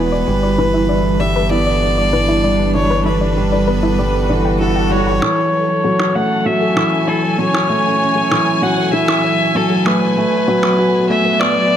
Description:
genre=piano and strings electronica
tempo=97 BPM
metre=4/4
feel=straight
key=F# minor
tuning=A4 = 440 Hz
part: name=clear violin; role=melody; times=0.0-11.8 s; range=A4 to F#5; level=-18 LUFS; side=left 1 dB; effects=low-pass filter, digital delay
part: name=warm studio string section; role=sustained chords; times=0.0-11.8 s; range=E3 to G#5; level=-22 LUFS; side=right 1 dB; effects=none
part: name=felt-muted upright piano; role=riff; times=0.0-11.8 s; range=E3 to F#4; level=-18 LUFS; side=right 1 dB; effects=none
part: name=round analog bass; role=bass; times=0.0-5.2 s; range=E1 to G1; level=-20 LUFS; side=equal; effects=none
part: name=soft round pluck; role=arpeggios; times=0.1-11.6 s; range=E4 to B5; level=-24 LUFS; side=left 3 dB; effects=chorus, digital delay
part: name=swell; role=sound effects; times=4.3-5.2 s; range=none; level=-25 LUFS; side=right 1 dB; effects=none
part: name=percussion blips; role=drums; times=5.2-11.5 s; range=none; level=-21 LUFS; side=right 2 dB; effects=low-pass filter on perc, low-pass filter on room
room=moderate concert hall reverb, RT60 2.5 s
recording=none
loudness=-13 LUFS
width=side -9 dB against mid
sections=0.0-5.2 A section; 5.2-11.8 B section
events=swell 4.3-5.2; build-up 5.2-11.8; filter sweep on violin 5.2-11.8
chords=0.3 G6; 5.2 F#m7; 10.2 Bm7/F#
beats=| 0.28 0.90 1.51 2.13 | 2.75 3.37 3.99 4.61 | 5.23 5.84 6.46 7.08 | 7.70 8.32 8.94 9.56 | 10.17 10.79 11.41

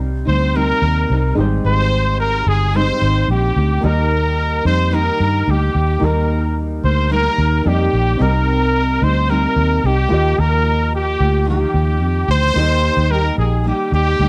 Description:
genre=indie pop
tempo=110 BPM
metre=4/4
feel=straight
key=Eb major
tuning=A4 = 437 Hz
part: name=nylon-string guitar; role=accompaniment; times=0.0-14.3 s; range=Ab2 to G4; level=-26 LUFS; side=equal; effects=lush chorus, warbly pitch drift
part: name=warm upright piano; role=accompaniment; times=0.0-14.3 s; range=G3 to Eb5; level=-29 LUFS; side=equal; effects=cassette tape
part: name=vintage muted fingered electric bass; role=bass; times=0.0-14.3 s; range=G1 to G2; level=-19 LUFS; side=equal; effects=none
part: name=clear trumpet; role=melody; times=0.3-14.3 s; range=G4 to C5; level=-21 LUFS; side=equal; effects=ensemble chorus, slapback echo
room=little or no reverb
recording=dry, close 1970s-style studio recording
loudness=-16 LUFS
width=mono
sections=0.0-12.6 A section; 12.6-14.3 B section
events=none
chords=0.0 Cm; 1.4 Abmaj7; 3.8 Eb; 8.2 Cm; 10.1 Ebadd9; 12.6 Eb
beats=0.00 0.55 1.09 | 1.64 2.19 2.73 3.28 | 3.83 4.38 4.92 5.47 | 6.01 6.56 7.11 7.65 | 8.20 8.74 9.29 9.84 | 10.38 10.93 11.47 12.02 | 12.56 13.11 13.65 14.20

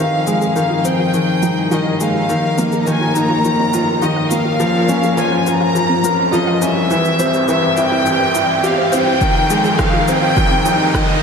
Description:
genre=piano and strings electronica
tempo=104 BPM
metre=4/4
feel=straight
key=F minor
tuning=A4 = 440 Hz
part: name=clear chamber violin section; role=melody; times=0.0-11.2 s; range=Eb5 to Bb5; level=-18 LUFS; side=left 1 dB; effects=ping-pong delay
part: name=dark studio string section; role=sustained chords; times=0.0-11.2 s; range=E3 to Bb4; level=-23 LUFS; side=left 2 dB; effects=none
part: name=analog pluck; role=arpeggios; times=0.0-11.2 s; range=E3 to F5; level=-25 LUFS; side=right 2 dB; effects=none
part: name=felt-muted upright piano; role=riff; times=0.0-11.2 s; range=Eb3 to Bb4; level=-17 LUFS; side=equal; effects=ping-pong delay
part: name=rich symphonic cello section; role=bass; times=0.0-11.2 s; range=C2 to Bb2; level=-25 LUFS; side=right 1 dB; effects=none
part: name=riser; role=sound effects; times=3.0-11.2 s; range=none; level=-25 LUFS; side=right 1 dB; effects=none
part: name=electronic shaker and rim click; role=drums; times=0.3-11.1 s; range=none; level=-27 LUFS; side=left 3 dB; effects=high-pass filter on perc, high-pass filter on snare
part: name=electronic kick drum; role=drums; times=9.2-11.1 s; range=none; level=-18 LUFS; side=right 1 dB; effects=none
room=wet plate reverb, RT60 2.0 s, small room ambience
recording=dreamy mix soaked in reverb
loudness=-13 LUFS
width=side -6 dB against mid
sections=0.0-11.2 A section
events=build-up 0.0-11.2; riser 3.0-11.2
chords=0.0 Fm7; 2.3 Ebsus2; 4.6 Bbm; 6.9 C; 9.2 Fm7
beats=0.56 1.14 1.72 | 2.29 2.87 3.45 4.02 | 4.60 5.18 5.75 6.33 | 6.91 7.49 8.06 8.64 | 9.22 9.79 10.37 10.95

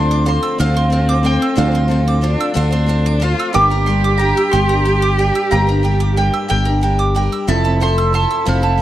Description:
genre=folk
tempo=61 BPM (dotted quarters)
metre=6/8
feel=straight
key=D minor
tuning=A4 = 445 Hz
part: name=mandolin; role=melody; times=0.0-8.8 s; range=F5 to D6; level=-21 LUFS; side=left 1 dB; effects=none
part: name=rich cello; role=second line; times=0.0-8.8 s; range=C4 to G4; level=-21 LUFS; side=right 2 dB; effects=none
part: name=picked twelve-string acoustic guitar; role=accompaniment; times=0.0-8.8 s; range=D3 to C5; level=-22 LUFS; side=left 5 dB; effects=none
part: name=warm upright piano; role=accompaniment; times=0.0-8.8 s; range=F1 to F5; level=-28 LUFS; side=right 10 dB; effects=none
part: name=bowl-back mandolin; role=arpeggios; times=0.0-8.8 s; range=C5 to E6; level=-22 LUFS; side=right 5 dB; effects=none
part: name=fingered electric bass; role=bass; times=0.0-8.8 s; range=F1 to D2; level=-16 LUFS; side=equal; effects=none
room=little or no reverb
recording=dry, close 1970s-style studio recording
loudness=-13 LUFS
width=side -13 dB against mid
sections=0.0-8.8 A section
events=none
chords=0.0 Dm7; 3.5 Gm; 7.5 Fmaj7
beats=0.59 | 1.57 2.56 | 3.54 4.53 | 5.51 6.49 | 7.47 8.46

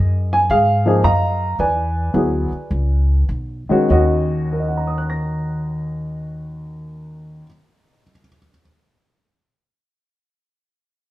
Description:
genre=jazz piano trio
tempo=98-114 BPM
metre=4/4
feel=swing 67% on 8ths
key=Eb minor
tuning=A4 = 438 Hz
part: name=warm baby grand piano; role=melody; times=0.0-8.6 s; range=Eb2 to Bb6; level=-18 LUFS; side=equal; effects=plate reverb
part: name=upright bass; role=bass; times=0.0-7.4 s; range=B1 to Ab2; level=-20 LUFS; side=equal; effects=none
room=wet studio reverb, RT60 0.6 s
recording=heard from further back in the room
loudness=-16 LUFS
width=side -16 dB against mid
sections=0.0-3.9 A section; 3.9-8.8 B section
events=slowing down 0.0-3.9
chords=0.0 Bb7sus4; 1.6 E13; 3.9 Ebm7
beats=0.50 1.04 | 1.58 2.14 2.71 3.29 | 3.90 4.51 5.13 5.74 | 6.36 6.97 7.59 8.20

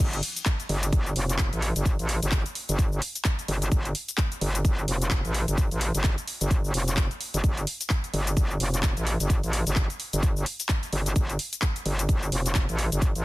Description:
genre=bass house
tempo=129 BPM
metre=4/4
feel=swing 59% on 16ths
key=unclear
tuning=A4 = 440 Hz
part: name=metallic wobble bass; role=bass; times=0.0-13.2 s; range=F1 to A1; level=-26 LUFS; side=equal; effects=chorus, sidechain pumping
part: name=big-room dance drum kit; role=drums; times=0.0-13.2 s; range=crash cymbal, handclaps, hi-hat, shaker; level=-31 LUFS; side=left 1 dB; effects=overdrive, studio reverb
part: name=electronic kick drum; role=drums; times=0.0-13.1 s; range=none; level=-24 LUFS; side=equal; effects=studio reverb
room=little or no reverb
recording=dense, heavily limited modern master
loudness=-24 LUFS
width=side -19 dB against mid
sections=0.0-13.2 A section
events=drop 0.0-13.2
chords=none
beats=| 0.00 0.46 0.93 1.39 | 1.86 2.32 2.79 3.25 | 3.72 4.18 4.65 5.11 | 5.58 6.04 6.51 6.97 | 7.44 7.90 8.37 8.83 | 9.30 9.76 10.23 10.69 | 11.16 11.62 12.09 12.55 | 13.02

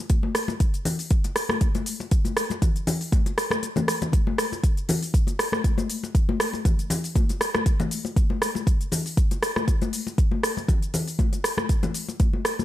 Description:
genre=house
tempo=119 BPM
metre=4/4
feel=swing 54% on 16ths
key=none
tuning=none
part: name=afro-pop drum kit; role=drums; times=0.1-12.6 s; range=cabasa, hi-hat, rim click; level=-27 LUFS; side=equal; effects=small room ambience
part: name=electronic kick drum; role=drums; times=0.1-12.3 s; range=none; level=-21 LUFS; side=equal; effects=small room ambience
part: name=congas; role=percussion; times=0.1-12.6 s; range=none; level=-28 LUFS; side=left 3 dB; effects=none
room=little or no reverb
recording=none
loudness=-22 LUFS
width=side -14 dB against mid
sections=0.0-12.6 A section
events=break 3.6-4.1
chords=none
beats=| 0.10 0.60 1.11 1.61 | 2.12 2.62 3.12 3.63 | 4.13 4.64 5.14 5.64 | 6.15 6.65 7.16 7.66 | 8.17 8.67 9.17 9.68 | 10.18 10.69 11.19 11.70 | 12.20

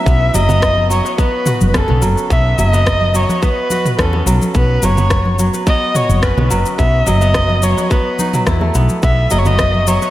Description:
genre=organic downtempo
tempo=107 BPM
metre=4/4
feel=swing 53% on 16ths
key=B mixolydian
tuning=A4 = 440 Hz
part: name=dark kamancheh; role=melody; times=0.0-10.1 s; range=A4 to E5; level=-18 LUFS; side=equal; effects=diffuse ambient delay
part: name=kora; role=arpeggios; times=0.0-10.1 s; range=F#3 to B4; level=-20 LUFS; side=right 1 dB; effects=diffuse ambient delay
part: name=woody fretless electric bass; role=bass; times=0.0-10.0 s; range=F#1 to E2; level=-14 LUFS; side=equal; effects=tube saturation, wide subtle chorus, sidechain pumping
part: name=deep house drum kit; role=drums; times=0.1-10.1 s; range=cabasa, rim click, toms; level=-22 LUFS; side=left 1 dB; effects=studio reverb
part: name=electronic kick drum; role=drums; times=0.1-9.7 s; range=none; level=-16 LUFS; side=equal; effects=overdrive, studio reverb
part: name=bongos and congas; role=percussion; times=0.3-9.9 s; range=none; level=-23 LUFS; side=right 1 dB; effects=none
room=moderate lush hall reverb, RT60 2.5 s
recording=dreamy mix soaked in reverb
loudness=-12 LUFS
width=side -14 dB against mid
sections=0.1-10.1 A section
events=none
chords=0.1 B7sus4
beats=| 0.06 0.62 1.18 1.75 | 2.31 2.87 3.43 3.99 | 4.55 5.11 5.67 6.23 | 6.79 7.35 7.91 8.47 | 9.03 9.60

